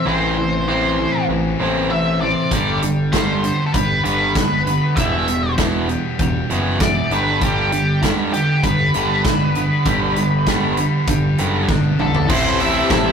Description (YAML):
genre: indie rock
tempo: 98 BPM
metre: 4/4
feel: straight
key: unclear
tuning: A4 = 442 Hz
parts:
  - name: octave-fuzz lead guitar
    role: melody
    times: 0.0-13.1 s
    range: G4 to E5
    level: -21 LUFS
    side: equal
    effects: distortion
  - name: biting overdriven guitar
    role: riff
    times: 0.0-13.1 s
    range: E3 to E4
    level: -24 LUFS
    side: left 5 dB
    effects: none
  - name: distorted electric guitar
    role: riff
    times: 0.0-13.1 s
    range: E2 to E4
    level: -20 LUFS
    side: right 2 dB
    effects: overdrive
  - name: growling picked electric bass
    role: bass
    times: 0.1-13.1 s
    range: E1 to A1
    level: -24 LUFS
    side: left 2 dB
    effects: overdrive
  - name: big rock drum kit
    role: drums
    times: 2.5-13.0 s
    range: crash cymbal, hi-hat, kick drum, snare drum, toms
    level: -21 LUFS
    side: equal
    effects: none
  - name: airy breathy pad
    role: sustained chords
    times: 12.5-13.1 s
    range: G4 to A5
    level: -24 LUFS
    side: left 4 dB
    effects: chorus
room: moderate studio reverb, RT60 0.6 s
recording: rough rehearsal-room recording, tube saturation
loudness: -15 LUFS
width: side -7 dB against mid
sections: 0.0-12.3 A section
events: drum fill 11.7-12.3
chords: 0.0 Am; 2.5 G; 5.0 Em; 7.1 G; 12.3 Am7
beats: | 0.07 0.68 1.29 1.91 | 2.52 3.13 3.74 4.36 | 4.97 5.58 6.19 6.80 | 7.42 8.03 8.64 9.25 | 9.86 10.47 11.08 11.69 | 12.30 12.91